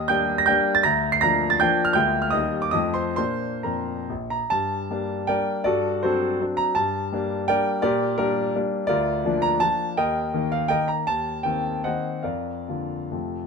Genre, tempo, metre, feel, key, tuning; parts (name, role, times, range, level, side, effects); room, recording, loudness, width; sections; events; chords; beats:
classical, romantic triple-time dance for piano with dotted rhythms; 125-178 BPM; 3/4; rubato; Bb major, G minor from 4.5 s, Bb major from 8.9 s; A4 = 439 Hz
warm concert grand piano; solo; 0.0-13.5 s; Bb1 to C7; -21 LUFS; equal
light reverb; minimal, uncompressed stereo recording; -21 LUFS; side -5 dB against mid
0.0-4.5 A section; 4.5-13.5 B section
0.0 Ebmaj7; 0.8 Bb/D; 1.9 Bb7/D; 2.3 Eb; 2.7 F7; 3.2 Bb; 4.5 Gm; 5.7 D7/G; 6.8 Gm; 7.8 Gm/Bb; 8.9 Bb/D; 10.0 Eb; 11.1 Cm7b5/Eb; 12.3 Bb/F
0.10 0.48 | 0.84 1.21 1.59 | 1.95 2.33 2.75 | 3.18 3.65 4.10 | 4.51 4.90 5.29 | 5.65 6.03 6.41 | 6.76 7.12 7.48 | 7.83 8.18 8.55 | 8.89 9.25 9.62 | 9.98 10.34 10.71 | 11.07 11.45 11.85 | 12.26 12.69 13.13